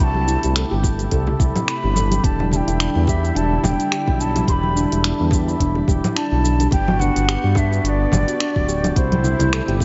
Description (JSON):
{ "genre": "organic downtempo", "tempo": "107 BPM", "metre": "4/4", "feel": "swing 56% on 16ths", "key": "E minor", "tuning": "A4 = 440 Hz", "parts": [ { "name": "breathy hollow bansuri", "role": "melody", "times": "0.0-9.8 s", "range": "C5 to C6", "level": "-28 LUFS", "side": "equal", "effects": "digital delay, shimmer reverb" }, { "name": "warm analog pad", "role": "sustained chords", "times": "0.0-9.8 s", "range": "C3 to E4", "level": "-31 LUFS", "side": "equal", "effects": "chorus, sidechain pumping, shimmer reverb" }, { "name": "handpan", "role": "arpeggios", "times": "0.0-9.8 s", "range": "D4 to A4", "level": "-26 LUFS", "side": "equal", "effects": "digital delay, shimmer reverb" }, { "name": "smooth synth bass", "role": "bass", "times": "0.0-9.8 s", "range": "D1 to G2", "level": "-22 LUFS", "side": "equal", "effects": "sidechain pumping" }, { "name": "organic electronic drum kit", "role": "drums", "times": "0.0-9.8 s", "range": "congas, finger snaps, hi-hat, shaker", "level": "-27 LUFS", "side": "equal", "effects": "overdrive" }, { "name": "congas and bongos", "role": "percussion", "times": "0.1-9.8 s", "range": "none", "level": "-30 LUFS", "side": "equal", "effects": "none" }, { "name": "electronic kick drum", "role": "drums", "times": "0.8-9.8 s", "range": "none", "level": "-22 LUFS", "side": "equal", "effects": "overdrive" } ], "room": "light reverb, small room ambience", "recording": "nothing above 7.7 kHz", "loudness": "-19 LUFS", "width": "mono", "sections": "0.0-9.8 A section", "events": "none", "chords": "0.0 C6; 2.2 Em7; 6.7 Gmaj7; 9.0 C6", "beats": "0.56 1.12 1.68 | 2.24 2.80 3.36 3.92 | 4.48 5.04 5.60 6.16 | 6.72 7.28 7.84 8.41 | 8.97 9.53" }